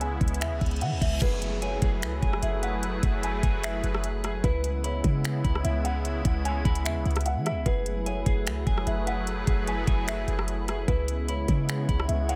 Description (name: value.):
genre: hip hop, atmospheric cloud-rap.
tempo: 149 BPM.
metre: 4/4.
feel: half-time.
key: F# minor.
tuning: A4 = 440 Hz.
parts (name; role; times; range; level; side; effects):
felt-muted upright piano; melody; 0.0-12.4 s; B4 to G#5; -37 LUFS; equal; low-pass filter, digital delay.
sweeping resonant pad; sustained chords; 0.0-12.4 s; C#3 to B4; -36 LUFS; equal; chorus, sidechain pumping.
clean 808-style bass; bass; 0.0-12.4 s; F#1 to E3; -31 LUFS; equal; none.
smooth R&B drum kit; drums; 0.0-12.4 s; crash cymbal, finger snaps, hi-hat, kick drum, rim click; -30 LUFS; equal; none.
drifting glass-harmonics texture; texture; 0.0-12.4 s; A3 to C#5; -46 LUFS; equal; chorus, built-in reverb.
reverse cymbal and downlifter; sound effects; 0.6-4.4 s; none; -42 LUFS; equal; none.
electric guitar at the edge of break-up; arpeggios; 1.2-12.4 s; E4 to B5; -40 LUFS; equal; subtle chorus, low-pass filter, digital delay.
room: digital ambience.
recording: none.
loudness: -27 LUFS.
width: mono.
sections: 0.0-1.2 A section; 1.2-12.4 B section.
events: reverse cymbal 0.6-1.2.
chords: 0.0 C#m7; 1.2 F#m11; 4.4 C#m7; 7.7 F#m11; 10.9 C#m7.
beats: 0.01 0.41 0.81 | 1.22 1.62 2.02 2.42 | 2.83 3.23 3.63 4.04 | 4.44 4.84 5.24 5.65 | 6.05 6.45 6.86 7.26 | 7.66 8.06 8.46 8.87 | 9.27 9.67 10.08 10.48 | 10.88 11.28 11.69 12.09.